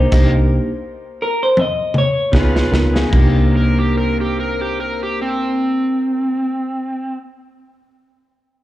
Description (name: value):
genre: straight-eighth soul blues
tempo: 74-86 BPM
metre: 4/4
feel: swing 55% on 16ths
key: C minor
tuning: A4 = 440 Hz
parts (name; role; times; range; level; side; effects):
- electric guitar through a small old amp; melody; 0.0-2.3 s; Bb4 to Eb5; -19 LUFS; left 1 dB; none
- reed electric piano; accompaniment; 0.0-6.2 s; Bb3 to Bb4; -22 LUFS; right 3 dB; spring reverb, slapback echo
- electric guitar through a small old amp; stabs; 0.0-6.7 s; F3 to Ab4; -25 LUFS; left 3 dB; slapback echo
- vintage muted fingered electric bass; bass; 0.0-6.2 s; C2 to Db2; -16 LUFS; equal; none
- mellow horn section; sustained chords; 0.1-6.2 s; C4 to Cb5; -28 LUFS; left 2 dB; none
- crunchy breakbeat drum kit; drums; 0.1-3.3 s; crash cymbal, hi-hat, kick drum, snare drum, toms; -18 LUFS; equal; none
- overdriven slide guitar; second line; 2.4-7.2 s; C4 to Bb4; -21 LUFS; right 1 dB; none
room: light reverb, small room ambience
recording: live gig heard through the venue's PA, club reverb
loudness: -14 LUFS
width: side -14 dB against mid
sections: 0.0-3.1 A section; 3.1-6.4 B section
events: slowing down 0.0-3.1; stop 0.1-2.3; drum fill 1.6-3.1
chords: 0.0 Cm7; 2.3 Db7; 3.1 Cm7